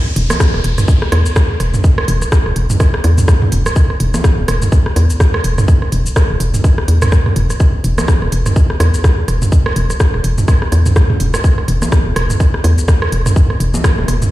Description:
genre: minimal techno.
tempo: 125 BPM.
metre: 4/4.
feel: swing 58% on 16ths.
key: unclear.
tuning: A4 = 440 Hz.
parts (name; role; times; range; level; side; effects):
downlifter and zap; sound effects; 0.0-3.8, 11.3-11.4 s; none; -30 LUFS; left 1 dB; none.
hollow knocking FM bass; bass; 0.2-14.2 s; E1 to E2; -14 LUFS; equal; tube saturation, sidechain pumping.
garage drum kit; drums; 0.2-14.3 s; hi-hat, rim click, shaker; -22 LUFS; left 1 dB; none.
organic electronic drum kit; percussion; 0.3-14.3 s; bongos, rim click, toms; -18 LUFS; right 1 dB; tape echo.
electronic kick drum; drums; 0.4-14.0 s; none; -11 LUFS; equal; none.
room: little or no reverb.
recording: played on a big sound system in a bare room, large studio reverb.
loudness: -11 LUFS.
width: side -16 dB against mid.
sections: 0.0-14.3 A section.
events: none.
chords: none.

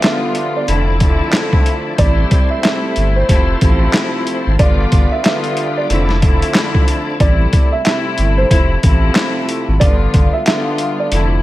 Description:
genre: hip hop, boom-bap hip-hop.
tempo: 92 BPM.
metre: 4/4.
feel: swing 60% on 16ths.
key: A minor.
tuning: A4 = 440 Hz.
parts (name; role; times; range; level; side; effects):
dark upright piano; melody; 0.0-11.3 s; C5 to E5; -21 LUFS; right 3 dB; high-pass filter, low-pass filter, digital delay.
warm studio string section; accompaniment; 0.0-11.4 s; F2 to F4; -18 LUFS; left 1 dB; cassette tape, high-pass filter, low-pass filter.
bright tonewheel organ; sustained chords; 0.0-7.2 s; F3 to D5; -26 LUFS; equal; chorus vibrato, slow rotary speaker, high-pass filter, low-pass filter.
boom bap sampler-style drum kit; drums; 0.0-11.3 s; handclaps, hi-hat, kick drum, snare drum; -14 LUFS; equal; none.
sub bass with octave; bass; 0.7-11.4 s; F1 to A1; -15 LUFS; equal; none.
room: light reverb.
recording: vinyl crackle.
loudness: -12 LUFS.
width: side -16 dB against mid.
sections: 0.0-7.2 A section; 7.2-11.4 B section.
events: none.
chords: 0.0 G7; 0.7 Dmadd9/F; 2.0 Am7; 3.3 Fmaj7; 4.6 G7; 5.9 Dmadd9/F; 7.2 Am7; 8.5 Fmaj7; 9.8 G7.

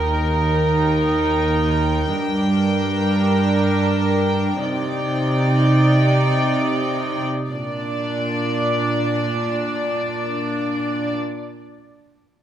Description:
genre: cinematic, emotional film score for orchestra.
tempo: free time.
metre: none.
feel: none.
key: Bb major.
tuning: A4 = 440 Hz.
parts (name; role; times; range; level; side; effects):
rich studio violin section; melody; 0.0-11.1 s; D5 to G5; -29 LUFS; left 4 dB; none.
warm studio viola section; accompaniment; 0.0-11.1 s; D4 to D5; -21 LUFS; right 1 dB; none.
warm studio cello section; bass; 0.0-11.1 s; Eb2 to C3; -21 LUFS; right 1 dB; none.
room: moderate scoring stage reverb, RT60 1.7 s.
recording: none.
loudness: -17 LUFS.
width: side -10 dB against mid.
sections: 0.0-7.5 A section; 7.5-10.4 B section.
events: slowing down 1.0-7.5.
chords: 0.0 Eb; 2.2 Gm; 4.6 Cmadd9; 7.5 Bb.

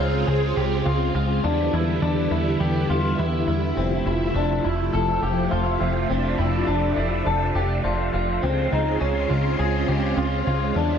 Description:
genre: dream pop.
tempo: 103 BPM.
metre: 4/4.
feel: straight.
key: unclear.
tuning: A4 = 442 Hz.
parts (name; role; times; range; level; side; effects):
phased string machine; sustained chords; 0.0-11.0 s; C3 to F4; -24 LUFS; right 1 dB; ensemble chorus, phaser.
electric guitar through a small old amp; arpeggios; 0.0-11.0 s; C4 to A4; -26 LUFS; left 2 dB; wide subtle chorus, ping-pong delay.
plucky analog bass; bass; 0.0-11.0 s; F1 to E2; -24 LUFS; equal; none.
room: moderate concert hall reverb, RT60 2.6 s.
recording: none.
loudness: -20 LUFS.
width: side -8 dB against mid.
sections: 0.0-11.0 A section.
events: none.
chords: 0.0 Dbmaj7; 1.4 Em7; 3.8 Fmaj7; 8.4 Dbmaj7.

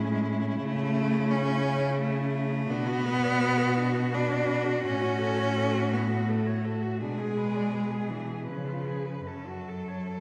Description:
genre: classical, lyrical piece for cello ensemble.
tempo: 83 BPM.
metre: 3/4.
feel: rubato.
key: F# minor.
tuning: A4 = 440 Hz.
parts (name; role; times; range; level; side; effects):
rich cello; melody; 0.0-10.2 s; E4 to B4; -38 LUFS; equal; none.
rich cello; second line; 0.0-10.2 s; C#4 to D5; -38 LUFS; equal; none.
clear cello; accompaniment; 0.0-10.2 s; E3 to D4; -32 LUFS; equal; none.
clear cello; bass; 0.0-10.2 s; F#2 to C#3; -33 LUFS; equal; none.
room: wet scoring stage reverb, RT60 1.6 s.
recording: heard from further back in the room.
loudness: -28 LUFS.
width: mono.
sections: 0.0-10.2 A section.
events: none.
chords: 0.0 A; 0.6 A/C#; 2.7 Bm; 4.8 F#m/A; 7.0 G#dim/B; 8.5 C#7; 9.3 F#m.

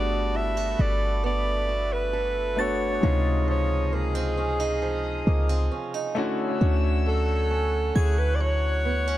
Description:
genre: contemporary R&B.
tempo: 67 BPM.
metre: 4/4.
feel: straight.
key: unclear.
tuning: A4 = 440 Hz.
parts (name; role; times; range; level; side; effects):
breathy alto saxophone; melody; 0.0-9.2 s; G#4 to E5; -28 LUFS; right 1 dB; analog delay.
warm concert grand piano; accompaniment; 0.0-9.2 s; B#2 to F#4; -31 LUFS; left 3 dB; analog delay.
chorused pulse-width pad; sustained chords; 0.0-9.2 s; A4 to F#6; -35 LUFS; left 1 dB; none.
fingerpicked swing-style acoustic guitar; arpeggios; 0.0-9.2 s; C#3 to A4; -33 LUFS; right 7 dB; analog delay.
clean 808-style bass; bass; 0.0-9.2 s; G1 to D2; -25 LUFS; equal; none.
glassy synth bell; texture; 2.6-9.2 s; G#6 to A6; -36 LUFS; left 1 dB; chorus, phaser, analog delay.
room: light reverb, small room ambience.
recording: echo-heavy mix.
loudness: -22 LUFS.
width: side -14 dB against mid.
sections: 0.0-9.2 A section.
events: none.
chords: 0.0 Gmaj9; 3.0 C#maj9; 6.2 Dmaj9.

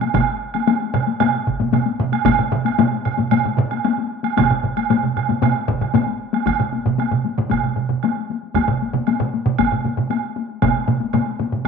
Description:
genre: japanese traditional, taiko drum ensemble.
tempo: 115 BPM.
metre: 4/4.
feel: straight.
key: none.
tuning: none.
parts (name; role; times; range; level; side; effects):
taiko ensemble; percussion; 0.0-11.7 s; none; -21 LUFS; left 9 dB; none.
woodblock; percussion; 0.0-11.7 s; none; -24 LUFS; right 12 dB; none.
solo taiko drums; percussion; 0.1-11.6 s; none; -25 LUFS; left 5 dB; none.
taiko ensemble; percussion; 0.1-11.6 s; none; -22 LUFS; right 9 dB; none.
taiko ensemble; percussion; 0.1-11.7 s; none; -26 LUFS; right 4 dB; none.
room: moderate spring reverb, RT60 1.6 s, studio ambience.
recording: 1960s-style stereo with parts hard left and right.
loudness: -17 LUFS.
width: side -5 dB against mid.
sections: 0.0-6.5 A section; 6.5-11.7 B section.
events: speeding up 0.0-11.7.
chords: none.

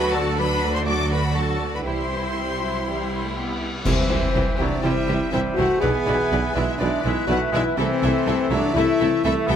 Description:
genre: cinematic, heroic adventure film score.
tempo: 122 BPM.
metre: 4/4.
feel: straight.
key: C lydian.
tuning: A4 = 440 Hz.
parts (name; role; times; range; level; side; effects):
rich studio violin section; melody; 0.0-9.6 s; C5 to D6; -31 LUFS; left 4 dB; none.
mellow flute section; second line; 0.0-9.6 s; A4 to E5; -31 LUFS; right 1 dB; none.
rich studio violin section; second line; 0.0-9.6 s; D4 to E5; -32 LUFS; left 1 dB; none.
warm cor anglais; second line; 0.0-9.6 s; E3 to D5; -30 LUFS; right 2 dB; none.
rich symphonic viola section; accompaniment; 0.0-9.6 s; D3 to E4; -31 LUFS; equal; none.
mellow French horn section; sustained chords; 0.0-9.6 s; C4 to G#4; -24 LUFS; left 4 dB; none.
mellow trombone section; sustained chords; 0.0-9.6 s; D3 to C4; -33 LUFS; right 4 dB; none.
rich symphonic cello section; bass; 0.0-9.6 s; B2 to F#4; -30 LUFS; right 2 dB; none.
rich symphonic double bass section; bass; 0.0-9.6 s; B1 to D2; -27 LUFS; right 2 dB; none.
mellow tuba; bass; 3.8-9.6 s; B1 to C2; -29 LUFS; right 4 dB; none.
warm clarinet; second line; 3.9-9.6 s; A4 to C5; -30 LUFS; left 2 dB; none.
clash cymbals and concert bass drum; percussion; 3.9-4.8 s; none; -29 LUFS; equal; none.
timpani; percussion; 3.9-4.6 s; C3; -33 LUFS; left 1 dB; none.
room: moderate recital hall reverb, RT60 1.4 s.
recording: none.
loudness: -19 LUFS.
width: side -8 dB against mid.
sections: 0.0-3.9 A section; 3.9-9.6 B section.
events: band accent 3.9-4.3.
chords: 0.0 D; 1.9 C; 5.8 E7/B; 7.8 Am/C.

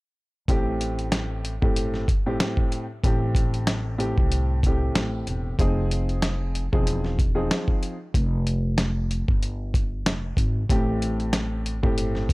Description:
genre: hip hop, boom-bap hip-hop.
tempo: 94 BPM.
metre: 4/4.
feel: swing 57% on 16ths.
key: unclear.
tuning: A4 = 440 Hz.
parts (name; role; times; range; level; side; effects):
dark upright piano; accompaniment; 0.5-12.3 s; A2 to Ab4; -28 LUFS; equal; high-pass filter, low-pass filter.
upright bass; bass; 0.5-12.3 s; E1 to C2; -26 LUFS; equal; transformer saturation.
dusty soul sampler-style drum kit; drums; 0.5-12.3 s; hi-hat, kick drum, snare drum; -23 LUFS; equal; none.
room: small room ambience.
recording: dry, gritty hardware recording.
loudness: -22 LUFS.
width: side -22 dB against mid.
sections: 0.5-12.3 A section.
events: none.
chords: 0.5 Am7; 5.6 Fm7; 10.7 Am7.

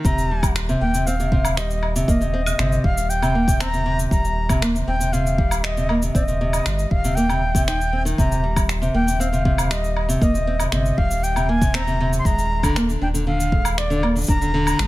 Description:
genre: folktronica.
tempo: 118 BPM.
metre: 4/4.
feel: straight.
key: Eb major.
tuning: A4 = 439 Hz.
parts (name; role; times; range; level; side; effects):
nylon-string guitar; arpeggios; 0.0-14.9 s; C3 to Eb4; -23 LUFS; equal; none.
round analog bass; bass; 0.0-14.9 s; Eb1 to Ab1; -23 LUFS; equal; tube saturation.
electronic kick drum; drums; 0.0-14.4 s; none; -21 LUFS; equal; none.
breathy bright concert flute; melody; 0.1-14.9 s; D5 to C6; -25 LUFS; equal; vintage 12-bit sampler grit, ping-pong delay.
electronic shaker, woodblock and finger snaps; drums; 0.1-14.9 s; none; -27 LUFS; equal; low-pass filter on perc, low-pass filter on snare, low-pass filter on room.
room: digital ambience.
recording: none.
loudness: -18 LUFS.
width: side -17 dB against mid.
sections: 0.0-14.9 A section.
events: none.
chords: 0.0 Eb6; 12.3 Bb7/Eb.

